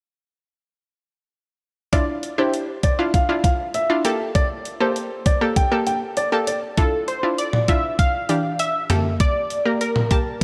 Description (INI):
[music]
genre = synth-pop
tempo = 99 BPM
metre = 4/4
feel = straight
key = D minor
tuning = A4 = 440 Hz
[part]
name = warm baby grand piano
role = second line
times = 1.9-6.6 s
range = C5 to G5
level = -26 LUFS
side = equal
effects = tape echo
[part]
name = analog pluck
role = accompaniment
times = 1.9-10.4 s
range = E3 to A5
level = -26 LUFS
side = equal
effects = chorus
[part]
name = gated 80s digital drum machine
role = drums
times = 1.9-10.4 s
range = hi-hat, kick drum, toms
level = -22 LUFS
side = equal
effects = gated reverb
[part]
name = funky polysynth comp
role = melody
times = 6.8-10.4 s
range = A4 to F5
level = -25 LUFS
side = equal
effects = chorus
[sound]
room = moderate lush hall reverb, RT60 2.8 s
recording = none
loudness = -21 LUFS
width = mono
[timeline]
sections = 1.9-6.8 A section; 6.8-10.4 B section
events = none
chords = 1.9 Dmadd9; 4.0 Gmadd9; 6.8 Dmadd9; 8.9 Gmadd9